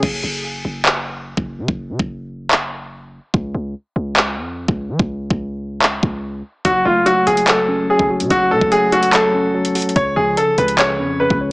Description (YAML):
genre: hip hop, drill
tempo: 145 BPM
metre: 4/4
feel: half-time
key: F# harmonic minor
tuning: A4 = 440 Hz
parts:
  - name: mellow tine electric piano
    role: accompaniment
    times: 0.0-0.1, 6.7-11.5 s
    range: C#3 to C#5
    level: -21 LUFS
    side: equal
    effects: medium stereo tremolo, low-pass filter
  - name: hard-hitting 808-style bass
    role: bass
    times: 0.0-11.5 s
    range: F#1 to E#3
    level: -25 LUFS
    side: equal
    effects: none
  - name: drill drum kit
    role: drums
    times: 0.0-11.4 s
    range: crash cymbal, handclaps, hi-hat, kick drum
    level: -18 LUFS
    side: equal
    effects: none
  - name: clear concert grand piano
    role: melody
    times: 6.6-11.4 s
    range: E#4 to C#5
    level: -15 LUFS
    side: equal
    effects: low-pass filter, analog delay
room: moderate spring reverb, RT60 1.3 s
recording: echo-heavy mix, small speaker sound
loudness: -15 LUFS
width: side -24 dB against mid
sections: 0.0-11.5 A section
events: break 0.0-6.6; filter sweep 0.0-6.6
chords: 0.0 F#5; 3.3 N.C.; 6.6 F#m; 10.0 C#